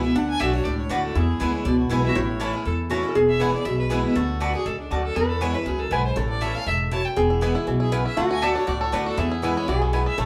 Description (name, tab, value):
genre	bluegrass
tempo	239 BPM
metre	4/4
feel	straight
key	E mixolydian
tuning	A4 = 442 Hz
part	clear fiddle	melody	0.0-10.3 s	D4 to A5	-32 LUFS	equal	none
part	lap resonator guitar	second line	0.0-10.3 s	D4 to B4	-29 LUFS	equal	none
part	picked swing-style acoustic guitar	accompaniment	0.0-10.3 s	E2 to F#4	-28 LUFS	equal	none
part	upright bass	bass	0.0-10.3 s	E1 to E2	-29 LUFS	equal	none
part	mandolin	stabs	0.4-10.0 s	A3 to A5	-32 LUFS	equal	none
part	bluegrass banjo	melody	7.2-10.3 s	E3 to A4	-30 LUFS	equal	none
room	moderate large studio reverb, RT60 0.9 s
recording	band playing live in one room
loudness	-23 LUFS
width	mono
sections	0.0-10.3 A section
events	none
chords	0.2 D; 1.2 E; 2.2 A; 3.2 E; 4.2 D; 5.2 E; 6.2 A; 7.2 E; 8.2 D; 9.2 E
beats	| 0.15 0.40 0.66 0.91 | 1.16 1.41 1.66 1.91 | 2.16 2.41 2.66 2.91 | 3.16 3.41 3.66 3.91 | 4.16 4.41 4.66 4.91 | 5.16 5.42 5.67 5.92 | 6.17 6.42 6.67 6.92 | 7.17 7.42 7.67 7.92 | 8.18 8.43 8.68 8.93 | 9.18 9.43 9.68 9.93 | 10.18